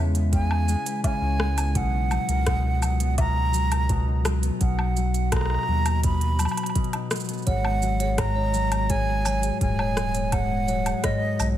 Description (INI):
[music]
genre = folktronica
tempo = 84 BPM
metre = 4/4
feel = straight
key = unclear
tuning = A4 = 439 Hz
[part]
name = bright wooden flute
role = melody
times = 0.0-11.5 s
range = D#5 to B5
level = -29 LUFS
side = right 2 dB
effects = ping-pong delay
[part]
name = concert harp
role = arpeggios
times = 0.0-11.6 s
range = G#2 to B4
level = -28 LUFS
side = left 3 dB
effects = vintage 12-bit sampler grit
[part]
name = warm sub bass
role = bass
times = 0.0-11.6 s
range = D#1 to E2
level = -24 LUFS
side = equal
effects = none
[part]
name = organic electronic drum kit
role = drums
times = 0.1-11.5 s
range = hi-hat, rim click, shaker, woodblock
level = -30 LUFS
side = equal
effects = overdrive, studio reverb
[part]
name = electronic kick drum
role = drums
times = 0.3-11.2 s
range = none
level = -26 LUFS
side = equal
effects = overdrive, studio reverb
[part]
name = music box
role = second line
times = 7.5-11.2 s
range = C#5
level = -32 LUFS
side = right 3 dB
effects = ping-pong delay
[sound]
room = light reverb, small room ambience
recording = none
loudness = -21 LUFS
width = side -12 dB against mid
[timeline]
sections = 0.0-11.6 A section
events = none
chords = 0.0 C#m7; 1.8 Bmaj7; 7.5 G#m7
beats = 0.32 1.04 | 1.75 2.47 3.18 3.90 | 4.61 5.32 6.04 6.75 | 7.47 8.18 8.89 9.61 | 10.32 11.04